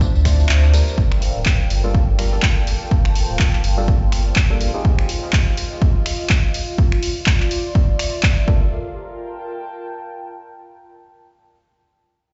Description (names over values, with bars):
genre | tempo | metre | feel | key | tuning
deep house | 124 BPM | 4/4 | swing 57% on 16ths | G minor | A4 = 439 Hz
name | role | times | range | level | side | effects
breathy tenor saxophone | melody | 0.0-0.5 s | D4 | -47 LUFS | equal | none
hollow soft pad | sustained chords | 0.0-8.7 s | F4 to A5 | -38 LUFS | equal | ensemble chorus, sidechain pumping
percussive organ stab | stabs | 0.0-5.1, 8.5-8.7 s | G3 to Bb4 | -32 LUFS | equal | lush chorus, sidechain pumping, tape echo
round analog bass | bass | 0.0-4.7, 8.5-8.7 s | D1 to D2 | -20 LUFS | equal | sidechain pumping
electronic kick drum | drums | 0.0-8.6 s | none | -19 LUFS | equal | none
punchy analog drum machine | drums | 0.0-8.3 s | finger snaps, handclaps, hi-hat, tambourine | -26 LUFS | equal | none
warbly tape-like pad | texture | 0.0-10.6 s | Bb3 to C6 | -32 LUFS | equal | chorus, built-in reverb, phaser, sidechain pumping
room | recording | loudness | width
light reverb | played on a big sound system in a bare room, stone room reverb, nothing above 7.8 kHz | -18 LUFS | mono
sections
1.0-8.7 A section; 8.7-10.7 B section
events
kick drops out 0.5-1.0; band accent 0.5; filter sweep on analog synth pad 1.0-8.7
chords
0.0 Dm9; 1.0 Gm9; 4.8 Fm9; 6.8 Dm9; 8.5 Gm9